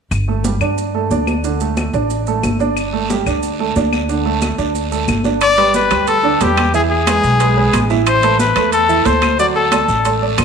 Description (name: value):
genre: latin, salsa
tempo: 181 BPM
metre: 4/4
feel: straight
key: G major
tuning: A4 = 442 Hz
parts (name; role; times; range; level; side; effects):
- upright bass; bass; 0.1-10.4 s; E1 to G2; -20 LUFS; equal; none
- claves; percussion; 0.1-10.4 s; none; -26 LUFS; left 12 dB; none
- congas; percussion; 0.1-10.4 s; none; -23 LUFS; left 1 dB; none
- maracas; percussion; 0.1-10.4 s; none; -31 LUFS; right 11 dB; none
- clear concert grand piano; accompaniment; 0.3-10.4 s; D3 to F#5; -18 LUFS; right 7 dB; none
- guiro; percussion; 2.8-10.4 s; none; -30 LUFS; right 9 dB; none
- bright trumpet; melody; 5.4-10.2 s; G4 to D5; -14 LUFS; left 4 dB; none
- timbales; percussion; 5.4-10.4 s; none; -24 LUFS; right 11 dB; none
room: wet echo chamber reverb, RT60 1.6 s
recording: 1960s-style stereo with parts hard left and right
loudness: -13 LUFS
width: side -6 dB against mid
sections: 0.1-5.4 A section; 5.4-10.4 B section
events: none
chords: 0.1 Gsus2; 5.4 G; 6.7 E; 8.1 Amadd9; 9.4 D